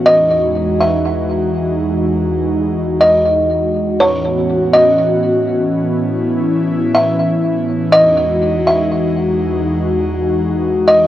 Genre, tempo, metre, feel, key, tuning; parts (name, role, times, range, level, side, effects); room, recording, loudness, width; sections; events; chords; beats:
hip hop; 122 BPM; 4/4; half-time; E major; A4 = 440 Hz
buzzing kalimba; melody; 0.0-11.1 s; C#5 to E5; -13 LUFS; equal; low-pass filter, tape echo
airy breathy pad; sustained chords; 0.0-11.1 s; E2 to F#4; -15 LUFS; equal; chorus, cassette tape
light reverb; home recording on cassette; -12 LUFS; side -13 dB against mid
0.0-4.0 A section; 4.0-11.1 B section
0.1 Emaj7; 4.0 A6; 7.9 Emaj7
| 0.06 0.55 1.05 1.54 | 2.03 2.52 3.01 3.50 | 4.00 4.49 4.98 5.47 | 5.96 6.46 6.95 7.44 | 7.93 8.42 8.91 9.41 | 9.90 10.39 10.88